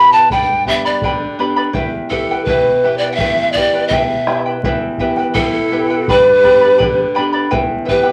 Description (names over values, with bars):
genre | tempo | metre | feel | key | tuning
andean folk, Andean ensemble | 83 BPM | 2/4 | straight | E minor | A4 = 441 Hz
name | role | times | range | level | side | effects
breathy polished pan flute | melody | 0.0-8.1 s | A4 to B5 | -14 LUFS | equal | none
charango | accompaniment | 0.0-8.1 s | E4 to B5 | -22 LUFS | equal | none
flamenco guitar | accompaniment | 0.0-8.1 s | E2 to G4 | -24 LUFS | equal | none
bombo | percussion | 0.3-8.1 s | none | -26 LUFS | equal | none
breathy mellow large quena | second line | 5.3-8.1 s | E4 to G4 | -24 LUFS | equal | none
room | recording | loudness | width
wet studio ambience, RT60 0.5 s | vinyl crackle | -14 LUFS | mono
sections
0.0-4.6 A section; 4.6-8.1 A section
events
none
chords
0.3 G; 1.8 Em; 6.1 G; 7.5 Em